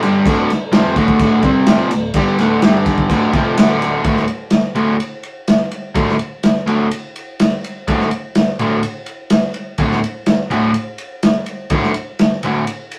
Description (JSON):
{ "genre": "garage rock duo or trio", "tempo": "125 BPM", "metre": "4/4", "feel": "straight", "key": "D minor", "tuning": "A4 = 443 Hz", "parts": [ { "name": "overdriven electric guitar", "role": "riff", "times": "0.0-12.6 s", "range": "D2 to C4", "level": "-17 LUFS", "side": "equal", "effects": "none" }, { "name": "crunchy breakbeat drum kit", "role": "drums", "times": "0.0-13.0 s", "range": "crash cymbal, kick drum, ride cymbal, snare drum", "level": "-19 LUFS", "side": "equal", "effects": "none" } ], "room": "moderate studio reverb, RT60 0.6 s", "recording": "rough rehearsal-room recording", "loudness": "-16 LUFS", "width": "mono", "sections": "0.0-4.1 A section; 4.1-13.0 B section", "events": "none", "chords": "0.0 Dm; 2.6 G5; 3.1 Dm; 4.1 D5", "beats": "| 0.26 0.73 1.20 1.68 | 2.15 2.62 3.10 3.58 | 4.05 4.53 5.01 5.49 | 5.96 6.44 6.92 7.40 | 7.88 8.36 8.84 9.32 | 9.80 10.28 10.76 11.24 | 11.72 12.20 12.68" }